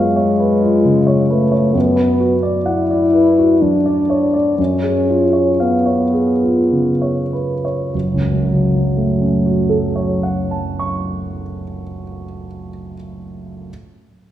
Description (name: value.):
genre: classical, romantic duo for French horn and grand piano.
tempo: 47-66 BPM.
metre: 3/4.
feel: rubato.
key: F# minor.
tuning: A4 = 440 Hz.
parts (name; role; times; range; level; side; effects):
dark French horn; melody; 0.0-11.4 s; F#3 to E4; -16 LUFS; left 2 dB; none.
dark grand piano; accompaniment; 0.0-13.7 s; F#1 to C#6; -17 LUFS; right 1 dB; none.
room: wet recital hall reverb, RT60 1.5 s.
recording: recorded in a church or concert hall.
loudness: -13 LUFS.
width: side -12 dB against mid.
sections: 0.0-7.9 A section; 7.9-11.5 B section.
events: slowing down 0.4-7.9.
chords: 0.0 C#7/F#; 1.7 Bm/F#; 4.6 C#7/F#; 7.9 F#m.